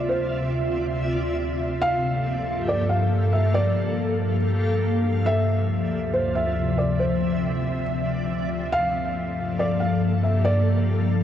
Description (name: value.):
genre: hip hop.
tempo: 139 BPM.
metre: 4/4.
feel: half-time.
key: D minor.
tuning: A4 = 440 Hz.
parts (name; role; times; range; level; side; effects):
felt-muted upright piano; melody; 0.0-11.2 s; C5 to F5; -26 LUFS; right 1 dB; tape echo.
ethereal airy pad; sustained chords; 0.0-11.2 s; D2 to E5; -22 LUFS; left 1 dB; ensemble chorus, built-in reverb.
backwards swelling texture; texture; 0.0-11.2 s; Bb3 to F5; -33 LUFS; right 1 dB; built-in reverb.
room: light reverb, digital ambience.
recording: worn, warbling old tape, cassette tape, warbly pitch drift.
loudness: -21 LUFS.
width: side -10 dB against mid.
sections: 0.0-11.2 A section.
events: none.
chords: 0.0 Dm9; 1.8 Gm9; 5.3 Dm9; 8.7 Gm9.